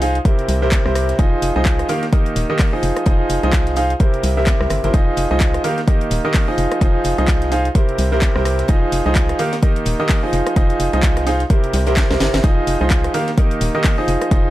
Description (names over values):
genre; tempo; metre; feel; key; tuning
piano house; 128 BPM; 4/4; swing 58% on 16ths; F minor; A4 = 441 Hz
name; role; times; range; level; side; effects
clear concert grand piano; riff; 0.0-14.5 s; C3 to F5; -19 LUFS; right 1 dB; sidechain pumping, tape echo
organ-like FM bass; bass; 0.0-14.5 s; Eb1 to C2; -20 LUFS; equal; sidechain pumping
deep reggae drum kit; drums; 0.0-14.4 s; hi-hat, snare drum; -34 LUFS; left 2 dB; none
house drum kit; drums; 0.0-14.4 s; handclaps, hi-hat, rim click, snare drum; -25 LUFS; left 1 dB; none
electronic kick drum; drums; 0.3-14.4 s; none; -15 LUFS; equal; none
room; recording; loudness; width
small room ambience; none; -14 LUFS; side -15 dB against mid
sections
0.0-14.5 A section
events
drum fill 12.0-12.4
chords
0.3 C7; 1.2 Fm7; 1.9 Eb; 2.8 Fm7; 4.0 C7; 4.9 Fm7; 5.6 Eb; 6.6 Fm7; 7.8 C7; 8.7 Fm7; 9.4 Eb; 10.3 Fm7; 11.5 C7; 12.4 Fm7; 13.1 Eb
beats
0.25 0.72 | 1.19 1.66 2.13 2.60 | 3.06 3.53 4.00 4.47 | 4.94 5.41 5.88 6.34 | 6.81 7.28 7.75 8.22 | 8.69 9.16 9.63 10.10 | 10.56 11.03 11.50 11.97 | 12.44 12.91 13.38 13.85 | 14.31